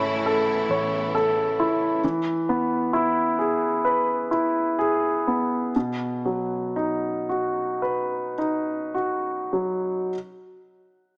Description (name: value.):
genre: pop ballad.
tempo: 48-67 BPM.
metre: 4/4.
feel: straight.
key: B mixolydian.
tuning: A4 = 440 Hz.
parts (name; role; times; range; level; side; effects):
clear grand piano; accompaniment; 0.0-10.2 s; B2 to C#5; -25 LUFS; equal; none.
clear studio string section; sustained chords; 0.0-2.0 s; C#3 to E4; -31 LUFS; equal; none.
vintage muted fingered electric bass; bass; 0.0-2.0 s; G#1 to A1; -40 LUFS; equal; none.
downlifter; sound effects; 0.0-2.0 s; none; barely audible; none; none.
room: moderate scoring stage reverb, RT60 1.9 s, small room ambience.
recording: small speaker sound.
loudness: -25 LUFS.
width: mono.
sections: 0.0-10.1 A section.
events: slowing down 2.0-10.1.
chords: 0.0 A; 2.0 E; 5.8 B.